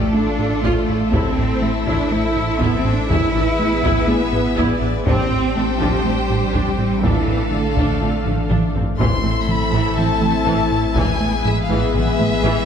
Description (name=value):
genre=cinematic, hybrid orchestral and electronic film score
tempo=122 BPM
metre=4/4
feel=straight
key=A minor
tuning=A4 = 439 Hz
part: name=rich chamber violin section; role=melody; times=0.0-12.7 s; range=E4 to C6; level=-26 LUFS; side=left 6 dB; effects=none
part: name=rich studio violin section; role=second line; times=0.0-12.7 s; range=G#4 to G5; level=-28 LUFS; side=left 2 dB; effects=none
part: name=clear symphonic viola section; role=accompaniment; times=0.0-12.7 s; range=E3 to A4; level=-26 LUFS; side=right 1 dB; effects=none
part: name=chorused pulse-width pad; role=sustained chords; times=0.0-12.7 s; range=G#3 to F5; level=-27 LUFS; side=equal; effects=none
part: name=rubbery square bass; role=riff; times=0.0-12.6 s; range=A2 to A3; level=-24 LUFS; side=right 1 dB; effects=none
part: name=pure sine sub bass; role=bass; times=0.0-12.7 s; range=A1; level=-26 LUFS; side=left 1 dB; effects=none
part: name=rich symphonic cello section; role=bass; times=0.0-12.5 s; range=A2 to E4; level=-23 LUFS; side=right 2 dB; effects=none
part: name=mellow French horn section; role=sustained chords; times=0.2-12.7 s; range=B3 to A4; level=-28 LUFS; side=left 4 dB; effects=none
part: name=rich symphonic double bass section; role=bass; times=0.2-12.5 s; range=A1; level=-27 LUFS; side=right 4 dB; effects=none
part: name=taiko ensemble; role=drums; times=0.6-12.4 s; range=none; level=-24 LUFS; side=left 1 dB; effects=none
room=moderate scoring stage reverb, RT60 1.6 s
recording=none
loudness=-16 LUFS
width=side -8 dB against mid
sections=0.0-9.0 A section; 9.0-12.7 B section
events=drum fill 8.3-9.0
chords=0.0 Dm/A; 1.1 Am; 3.1 E/A; 5.1 Gsus4/A; 7.0 Dm/A; 9.0 Am; 11.0 E/A